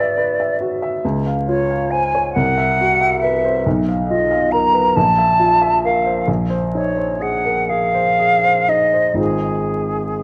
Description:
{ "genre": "classical, impressionist duo for flute and grand piano", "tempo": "39-47 BPM (dotted quarters)", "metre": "6/8", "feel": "rubato", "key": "unclear", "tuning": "A4 = 440 Hz", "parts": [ { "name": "concert flute", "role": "melody", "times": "0.0-10.2 s", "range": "Ab4 to A#5", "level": "-19 LUFS", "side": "equal", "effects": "none" }, { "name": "clear baby grand piano", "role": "accompaniment", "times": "0.0-10.2 s", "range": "Ab1 to F5", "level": "-21 LUFS", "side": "equal", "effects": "none" } ], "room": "moderate recital hall reverb, RT60 1.4 s", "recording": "close, detailed microphones, vinyl crackle", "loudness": "-17 LUFS", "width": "mono", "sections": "0.0-10.2 A section", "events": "none", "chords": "0.0 E9/G#; 1.0 Dbmaj7; 2.3 Cmaj7#11; 3.7 Bmaj7#11; 5.0 Bb5; 6.3 Bb9sus4; 9.2 Ab6" }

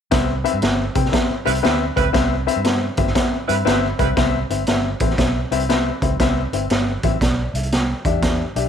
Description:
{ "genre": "uptempo 1960s-style soul", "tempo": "118 BPM", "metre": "4/4", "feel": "swing 65% on 8ths", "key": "C major", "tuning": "A4 = 440 Hz", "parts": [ { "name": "dark grand piano", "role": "accompaniment", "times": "0.1-8.7 s", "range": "C4 to G5", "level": "-22 LUFS", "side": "left 9 dB", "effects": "none" }, { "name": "vintage muted fingered electric bass", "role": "bass", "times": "0.1-8.7 s", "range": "G1 to C3", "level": "-23 LUFS", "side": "right 2 dB", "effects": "transformer saturation" }, { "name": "raw garage drum kit", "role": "drums", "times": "0.1-8.6 s", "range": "hi-hat, kick drum, snare drum", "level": "-20 LUFS", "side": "right 2 dB", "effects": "none" }, { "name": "bright saxophone section", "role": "second line", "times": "1.5-4.1 s", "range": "G3 to B4", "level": "-24 LUFS", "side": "right 12 dB", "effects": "none" } ], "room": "light reverb", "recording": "1960s-style stereo with parts hard left and right", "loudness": "-17 LUFS", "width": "side -8 dB against mid", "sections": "0.1-4.2 A section; 4.2-8.7 B section", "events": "none", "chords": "0.1 Cmaj7; 8.0 Em7" }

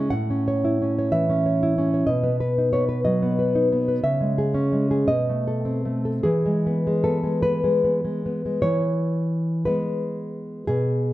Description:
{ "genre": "romantic piece for solo classical guitar", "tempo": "48-63 BPM (dotted quarters)", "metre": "6/8", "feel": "rubato", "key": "E major", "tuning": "A4 = 440 Hz", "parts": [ { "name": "nylon-string guitar", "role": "solo", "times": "0.0-11.1 s", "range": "A2 to F#5", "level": "-20 LUFS", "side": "equal", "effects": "none" } ], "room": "moderate recital hall reverb, RT60 1.5 s", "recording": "close, detailed microphones", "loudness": "-20 LUFS", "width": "side -15 dB against mid", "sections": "0.0-8.6 A section; 8.6-11.1 A section", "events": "none", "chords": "0.1 F#m7/A; 2.1 B; 4.0 C#m; 5.1 B7b9; 6.3 E" }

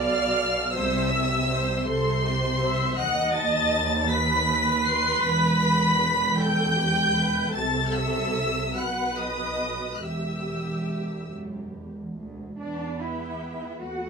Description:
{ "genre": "classical, slow romantic movement for string orchestra", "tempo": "45-54 BPM (dotted quarters)", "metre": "6/8", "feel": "rubato", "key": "E minor", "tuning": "A4 = 440 Hz", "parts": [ { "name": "rich symphonic violin section", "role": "melody", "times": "0.0-14.1 s", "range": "B4 to C7", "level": "-28 LUFS", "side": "left 2 dB", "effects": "none" }, { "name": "rich symphonic violin section", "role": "second line", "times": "0.0-14.1 s", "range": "C5 to C6", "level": "-29 LUFS", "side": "equal", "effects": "none" }, { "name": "rich chamber viola section", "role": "accompaniment", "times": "0.0-14.1 s", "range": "A3 to E5", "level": "-29 LUFS", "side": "right 2 dB", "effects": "none" }, { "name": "warm chamber cello section", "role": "bass", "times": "0.0-14.1 s", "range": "D2 to F#4", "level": "-30 LUFS", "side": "right 1 dB", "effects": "none" }, { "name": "warm chamber double bass section", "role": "bass", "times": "0.0-14.1 s", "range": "E1 to E2", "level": "-31 LUFS", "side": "right 2 dB", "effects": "none" } ], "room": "light reverb", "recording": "none", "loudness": "-22 LUFS", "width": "side -5 dB against mid", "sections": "0.0-12.6 A section; 12.6-14.1 B section", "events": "none", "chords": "0.0 Bdim; 0.7 C; 3.0 B/D#; 5.2 Em; 7.5 Am/C; 8.8 B; 10.0 Em" }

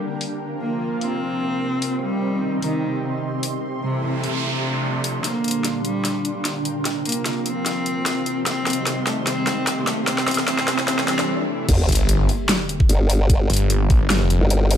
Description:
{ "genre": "heavy wobble dubstep", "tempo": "149 BPM", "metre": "4/4", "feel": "swing 54% on 16ths, half-time", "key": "G minor", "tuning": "A4 = 442 Hz", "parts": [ { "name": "lush unison pad", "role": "sustained chords", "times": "0.0-14.8 s", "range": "Bb2 to G4", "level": "-29 LUFS", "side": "right 1 dB", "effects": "chorus, sidechain pumping" }, { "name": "granular cloud pad", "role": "texture", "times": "0.0-11.3 s", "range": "C4 to C6", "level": "-28 LUFS", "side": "equal", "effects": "built-in reverb, sidechain pumping" }, { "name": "dubstep drum kit", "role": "drums", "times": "0.2-14.8 s", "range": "crash cymbal, hi-hat, snare drum", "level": "-23 LUFS", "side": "left 1 dB", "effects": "high-pass filter on hats, low-pass filter on hats, high-pass filter on snare, low-pass filter on snare, high-pass filter on cymbals, low-pass filter on cymbals" }, { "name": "rich cello", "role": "melody", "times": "0.6-11.3 s", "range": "C3 to C4", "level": "-25 LUFS", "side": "equal", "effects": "tape echo" }, { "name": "noise sweep, riser, swell and sub drop", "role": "sound effects", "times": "3.9-13.3 s", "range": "none", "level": "-28 LUFS", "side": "equal", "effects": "none" }, { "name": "formant-sweep wobble bass", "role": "bass", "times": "11.7-14.8 s", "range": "G1", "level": "-18 LUFS", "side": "equal", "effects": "chorus, overdrive" }, { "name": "electronic kick drum", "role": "drums", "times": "11.7-14.0 s", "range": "none", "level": "-17 LUFS", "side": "equal", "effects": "none" }, { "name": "snarling distorted saw bass", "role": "bass", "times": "11.9-14.4 s", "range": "F1 to Bb1", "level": "-18 LUFS", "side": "equal", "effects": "distortion, overdrive" } ], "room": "light reverb, digital ambience", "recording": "none", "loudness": "-19 LUFS", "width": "side -9 dB against mid", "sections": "0.0-5.2 A section; 5.2-11.7 B section; 11.7-14.8 C section", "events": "noise sweep 3.9-5.2; build-up 5.2-11.7; drum fill 5.2-11.3; riser 5.2-11.3; filter sweep on analog synth pad 5.2-11.7; swell 10.9-11.7; break 11.3-11.7; drop 11.7-14.8; impact 11.7-13.3", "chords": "0.4 Fsus4; 2.0 Cm; 3.6 Am; 4.4 Dm7; 5.2 Gm; 6.9 Fsus4; 8.5 Cm; 10.1 Am; 11.7 Gm" }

